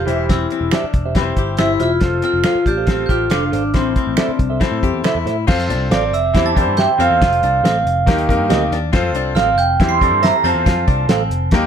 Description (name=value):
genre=uptempo 1960s-style soul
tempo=139 BPM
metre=4/4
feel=straight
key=F major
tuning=A4 = 440 Hz
part: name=vibraphone with medium hard mallets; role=melody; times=0.0-11.7 s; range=C4 to C6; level=-18 LUFS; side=right 2 dB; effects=none
part: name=glockenspiel with brass mallets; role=second line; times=0.0-11.7 s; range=C6 to C7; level=-27 LUFS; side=right 5 dB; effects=none
part: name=clear baby grand piano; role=accompaniment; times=0.0-11.7 s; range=A2 to E5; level=-23 LUFS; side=left 4 dB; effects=none
part: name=hollow-body jazz guitar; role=riff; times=0.0-11.7 s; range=Bb3 to G4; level=-25 LUFS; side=left 7 dB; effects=none
part: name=vintage muted picked electric bass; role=bass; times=0.0-11.7 s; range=E1 to A2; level=-22 LUFS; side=equal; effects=none
part: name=clean electric guitar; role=stabs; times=0.1-11.2 s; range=G4 to F5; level=-23 LUFS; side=right 6 dB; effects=none
part: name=cloth-damped thuddy drum kit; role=drums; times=0.1-11.6 s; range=crash cymbal, hi-hat, kick drum, snare drum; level=-18 LUFS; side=equal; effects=none
part: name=finger snaps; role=percussion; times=0.7-5.1 s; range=none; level=-28 LUFS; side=right 6 dB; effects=none
room=light reverb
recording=none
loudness=-14 LUFS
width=side -8 dB against mid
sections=0.0-5.5 A section; 5.5-11.7 B section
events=grand piano fill 4.8-5.5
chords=0.1 C/E; 2.0 F; 3.8 Am; 5.5 F; 6.3 C/E; 7.0 F; 8.1 Eb; 8.9 F; 9.8 C/E; 10.4 F